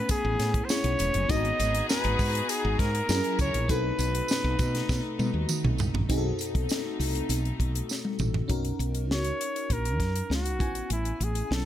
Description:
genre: polished 1980s jazz-funk pop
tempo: 100 BPM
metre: 4/4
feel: straight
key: B major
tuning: A4 = 442 Hz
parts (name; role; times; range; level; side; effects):
- warm flugelhorn; melody; 0.0-5.5, 9.1-11.7 s; E4 to D#5; -31 LUFS; equal; none
- FM electric piano with soft pad layer; accompaniment; 0.0-11.7 s; B3 to A#5; -34 LUFS; left 2 dB; phaser, wide subtle chorus
- warm studio string section; sustained chords; 0.0-8.5 s; B2 to A#4; -35 LUFS; left 1 dB; none
- tight funk drum kit; drums; 0.1-11.7 s; hi-hat, kick drum, snare drum, toms; -30 LUFS; equal; none
- tambourine; percussion; 0.1-8.3 s; none; -38 LUFS; right 8 dB; none
- woody fretless electric bass; bass; 0.2-11.7 s; E1 to B2; -29 LUFS; equal; none
room: small room ambience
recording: none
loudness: -25 LUFS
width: side -11 dB against mid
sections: 0.0-6.1 A section; 6.1-8.5 B section; 8.5-11.7 C section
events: drum fill 4.9-6.1, 7.9-8.5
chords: 0.0 Amaj9; 1.3 G#m7; 3.1 F#9; 3.7 B7b9; 8.5 Bmaj9; 10.6 Amaj9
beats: 0.10 0.70 | 1.30 1.90 2.50 3.10 | 3.70 4.30 4.90 5.50 | 6.10 6.70 7.30 7.90 | 8.50 9.10 9.70 10.30 | 10.90 11.50

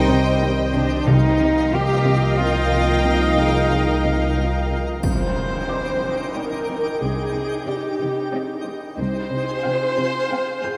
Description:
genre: cinematic, suspense film score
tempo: 91 BPM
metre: 3/4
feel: straight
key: C minor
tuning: A4 = 441 Hz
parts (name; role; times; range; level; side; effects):
- warm studio violin section; melody; 0.0-10.8 s; G5 to Ab5; -34 LUFS; equal; none
- warm chamber violin section; second line; 0.0-10.8 s; D5 to G5; -33 LUFS; equal; none
- warm chamber viola section; accompaniment; 0.0-10.8 s; G4 to Eb5; -28 LUFS; equal; none
- mellow French horn section; sustained chords; 0.0-4.7 s; Eb3 to F4; -31 LUFS; equal; none
- twinkling granular texture; sustained chords; 0.1-10.8 s; Eb4 to D6; -32 LUFS; equal; built-in reverb
- warm trombone section; sustained chords; 0.0-4.7 s; Eb3 to G3; -33 LUFS; equal; none
- dark chamber double bass section; bass; 0.0-9.5 s; C2; -25 LUFS; equal; none
- dark studio cello section; bass; 0.0-9.5 s; C2 to G4; -26 LUFS; equal; none
- felt-muted upright piano; texture; 0.0-10.8 s; G4 to G6; -38 LUFS; equal; none
- warm chamber cello section; riff; 0.1-10.8 s; C3 to C4; -30 LUFS; equal; none
- timpani; percussion; 1.1-2.0 s; C3; -27 LUFS; equal; none
- triangle; percussion; 5.0-6.3 s; none; -47 LUFS; equal; none
- impact; sound effects; 5.0-7.0 s; none; -32 LUFS; equal; none
room: wet cathedral reverb, RT60 5.4 s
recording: in a vast, echoing space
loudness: -21 LUFS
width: mono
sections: 0.0-5.0 A section; 5.0-10.8 B section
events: impact 5.0-7.0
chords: 0.0 Cm; 1.1 Ebadd9/C; 5.0 Cmadd9; 9.0 Fmadd9/C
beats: 0.41 | 1.07 1.73 2.39 | 3.05 3.71 4.37 | 5.03 5.69 6.35 | 7.01 7.67 8.32 | 8.98 9.64 10.30

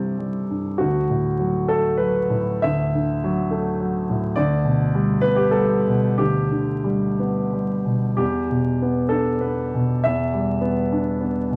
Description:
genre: neoclassical minimalist piano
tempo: 88-107 BPM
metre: 3/4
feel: rubato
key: E minor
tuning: A4 = 441 Hz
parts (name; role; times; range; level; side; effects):
- warm concert grand piano; solo; 0.0-11.6 s; C2 to E5; -21 LUFS; equal; none
room: wet club reverb, RT60 0.7 s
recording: vinyl crackle, nothing above 10.4 kHz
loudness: -21 LUFS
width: mono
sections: 0.0-8.2 A section; 8.2-11.6 B section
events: none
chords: 0.0 C; 0.8 D; 4.4 G/D; 8.2 Em7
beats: 0.16 | 0.78 1.39 1.99 | 2.62 3.21 3.79 | 4.36 4.93 5.54 | 6.19 6.85 7.52 | 8.19 8.80 9.41 | 10.05 10.63 11.20

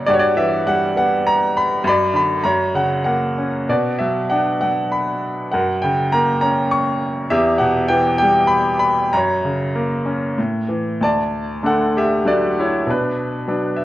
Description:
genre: classical, lyrical solo piano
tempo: 93-103 BPM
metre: 3/4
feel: rubato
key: unclear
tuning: A4 = 444 Hz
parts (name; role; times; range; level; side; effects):
- bright baby grand piano; solo; 0.0-13.8 s; D2 to C#6; -16 LUFS; equal; none
room: moderate recital hall reverb, RT60 1.7 s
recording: worn, warbling old tape, cassette tape, warbly pitch drift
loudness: -16 LUFS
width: side -15 dB against mid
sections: 0.0-11.0 A section; 11.0-13.8 B section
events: grand piano fill 13.5-13.8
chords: 0.1 Emadd9/G; 1.8 Bm/F#; 2.4 F#; 3.7 Bm; 5.5 F#; 7.3 Em; 9.1 F#; 10.4 A5; 11.0 D; 12.9 Bm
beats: | 0.07 0.67 1.25 | 1.84 2.44 3.06 | 3.68 4.30 4.92 | 5.53 6.12 6.71 | 7.30 7.90 8.51 | 9.13 9.75 10.38 | 11.02 11.64 12.26 | 12.87 13.47

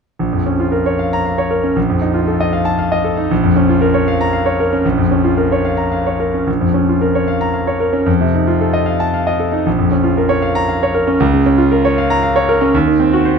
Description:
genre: classical, virtuoso piano study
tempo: 77 BPM (dotted quarters)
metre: 6/8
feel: rubato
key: Bb minor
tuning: A4 = 439 Hz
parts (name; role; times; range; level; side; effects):
- clear concert grand piano; solo; 0.2-13.4 s; Bb1 to Bb5; -12 LUFS; equal; none
room: little or no reverb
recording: close, detailed microphones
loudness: -12 LUFS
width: side -6 dB against mid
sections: 0.2-6.5 A section; 6.5-13.4 B section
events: none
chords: 0.2 Bbm; 1.8 F7/Bb; 3.3 Bbm; 8.1 F7; 9.7 Bbm; 11.2 Bbm/Db; 12.7 Cdim/Eb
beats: | 0.19 0.99 | 1.76 2.54 | 3.31 4.07 | 4.84 5.64 | 6.48 7.29 | 8.08 8.87 | 9.66 10.44 | 11.20 11.96 | 12.73

